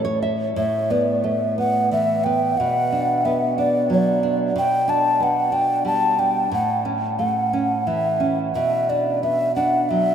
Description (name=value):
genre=children's music, lullaby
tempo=90 BPM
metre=3/4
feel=rubato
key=unclear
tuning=A4 = 438 Hz
part: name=breathy mellow alto ocarina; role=melody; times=0.0-10.1 s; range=C#5 to A5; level=-19 LUFS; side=equal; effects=none
part: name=nylon-string guitar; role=accompaniment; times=0.0-10.1 s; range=A2 to E5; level=-24 LUFS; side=right 2 dB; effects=none
room=wet huge ambient reverb, RT60 8.6 s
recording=in a vast, echoing space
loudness=-18 LUFS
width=side -8 dB against mid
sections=0.6-10.1 A section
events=nylon-string guitar fill 0.0-0.6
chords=0.0 A; 0.6 Asus2; 2.6 Bm; 4.6 G/B; 6.5 A; 8.5 Bm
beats=| 0.56 1.24 1.91 | 2.58 3.25 3.91 | 4.56 5.21 5.86 | 6.52 7.19 7.87 | 8.55 9.23 9.90